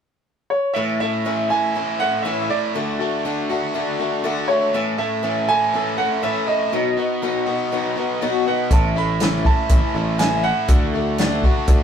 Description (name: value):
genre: folk rock and heartland rock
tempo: 121 BPM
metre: 4/4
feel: straight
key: A major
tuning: A4 = 441 Hz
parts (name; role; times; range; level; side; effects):
- bright concert grand piano; melody; 0.5-11.8 s; C#5 to B5; -22 LUFS; right 2 dB; none
- picked swing-style acoustic guitar; accompaniment; 0.8-11.8 s; A2 to A4; -24 LUFS; left 4 dB; none
- overdriven electric guitar; riff; 0.8-11.8 s; A2 to F#4; -24 LUFS; right 1 dB; none
- picked electric bass; bass; 8.7-11.8 s; A1 to D2; -24 LUFS; right 1 dB; none
- vintage drum kit; drums; 8.7-11.8 s; hi-hat, kick drum, snare drum; -17 LUFS; equal; none
room: moderate studio reverb, RT60 0.6 s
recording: band playing live in one room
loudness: -18 LUFS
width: side -8 dB against mid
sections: 0.8-11.8 A section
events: none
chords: 0.0 N.C.; 0.8 A; 2.7 D; 4.7 A; 6.7 B; 8.7 A; 10.7 D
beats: 0.26 | 0.75 1.25 1.75 2.25 | 2.75 3.24 3.74 4.24 | 4.74 5.23 5.73 6.23 | 6.73 7.22 7.72 8.22 | 8.71 9.21 9.71 10.20 | 10.70 11.20 11.69